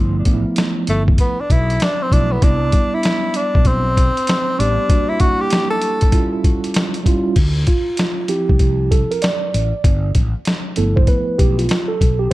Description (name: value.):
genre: hip hop, jazz-hop.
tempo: 97 BPM.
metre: 4/4.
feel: swing 63% on 16ths.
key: unclear.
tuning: A4 = 440 Hz.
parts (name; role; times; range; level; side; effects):
mellow tine electric piano; accompaniment; 0.0-12.3 s; F3 to D5; -21 LUFS; right 3 dB; medium stereo tremolo.
fretless electric bass; bass; 0.0-12.3 s; G1 to D2; -18 LUFS; equal; lush chorus.
boom bap sampler-style drum kit; drums; 0.3-12.2 s; crash cymbal, hi-hat, kick drum, snare drum; -16 LUFS; equal; none.
breathy tenor saxophone; melody; 0.9-6.3 s; A3 to A4; -20 LUFS; equal; analog delay.
room: light reverb.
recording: dark, warm production.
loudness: -14 LUFS.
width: side -17 dB against mid.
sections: 0.0-7.4 A section; 7.4-12.3 A section.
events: tenor saxophone solo 0.0-7.4; tine electric piano solo 7.4-12.3.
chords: 0.0 G13; 2.4 Cmaj9; 4.9 Em7b5; 6.1 C#dim/G; 7.4 Dm9; 9.8 G13.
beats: 0.57 1.19 1.80 | 2.42 3.04 3.66 4.28 | 4.90 5.51 6.13 6.75 | 7.37 7.99 8.61 9.23 | 9.85 10.46 11.08 11.70 | 12.32.